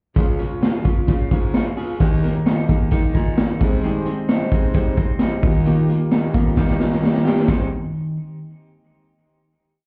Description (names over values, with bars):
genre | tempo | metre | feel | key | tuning
jangly indie pop | 131 BPM | 4/4 | straight | Ab major | A4 = 444 Hz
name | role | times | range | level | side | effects
picked acoustic archtop guitar | accompaniment | 0.2-7.7 s | Ab2 to F4 | -28 LUFS | equal | plate reverb
twelve-string electric guitar | arpeggios | 0.2-8.2 s | Db3 to Ab4 | -25 LUFS | equal | plate reverb
breathy baritone saxophone | bass | 0.2-7.7 s | Db2 to Eb3 | -31 LUFS | equal | none
raw garage drum kit | drums | 0.2-7.6 s | china cymbal, hi-hat, kick drum, snare drum | -21 LUFS | equal | none
room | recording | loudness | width
moderate studio ambience, RT60 0.5 s | heard muffled through a wall, club reverb, EQ | -19 LUFS | mono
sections
0.2-7.5 bridge; 7.5-9.3 final chord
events
drum fill 6.6-7.5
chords
0.2 Db; 2.0 Ebsus4; 3.6 Abmaj7; 5.4 Ebadd9; 7.5 Abmaj7